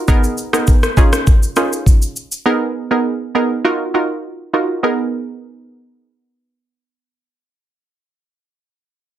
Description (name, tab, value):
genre	afrobeats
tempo	101 BPM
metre	4/4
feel	straight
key	G# dorian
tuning	A4 = 441 Hz
part	glassy wavetable pluck	accompaniment	0.1-7.9 s	B3 to A#4	-17 LUFS	right 2 dB	chorus
part	afro-pop drum kit	drums	0.1-2.5 s	kick drum, rim click, shaker	-12 LUFS	equal	none
room	light reverb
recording	dense, heavily limited modern master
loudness	-14 LUFS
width	side -12 dB against mid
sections	0.0-4.8 A section; 4.8-7.2 B section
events	none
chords	0.1 G#madd9; 1.0 C#add9; 2.5 G#madd9; 3.6 D#madd9; 4.8 G#madd9